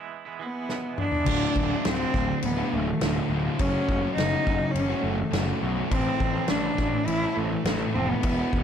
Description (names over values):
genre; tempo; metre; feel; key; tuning
quiet-loud alternative rock; 103 BPM; 4/4; straight; unclear; A4 = 440 Hz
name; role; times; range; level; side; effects
twangy electric guitar; arpeggios; 0.0-1.3 s; E2 to E4; -37 LUFS; right 9 dB; tremolo, tape echo
warm cello; melody; 0.4-8.6 s; A3 to E4; -28 LUFS; equal; tape echo
loose indie drum kit; drums; 0.7-8.6 s; crash cymbal, kick drum, snare drum, toms; -30 LUFS; equal; none
thick fuzz guitar; riff; 1.2-8.6 s; D2 to A4; -28 LUFS; equal; distortion
fuzz picked electric bass; bass; 1.3-8.6 s; D1 to B1; -30 LUFS; equal; overdrive
room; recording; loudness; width
small room ambience; none; -23 LUFS; side -8 dB against mid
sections
0.0-1.3 A section; 1.3-8.6 B section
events
break 0.0-1.3; drum fill 0.7-1.3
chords
0.0 E; 1.3 Dm; 3.6 F#m; 5.9 Am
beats
0.11 0.69 | 1.27 1.86 2.44 3.02 | 3.60 4.18 4.76 5.34 | 5.92 6.50 7.08 7.67 | 8.25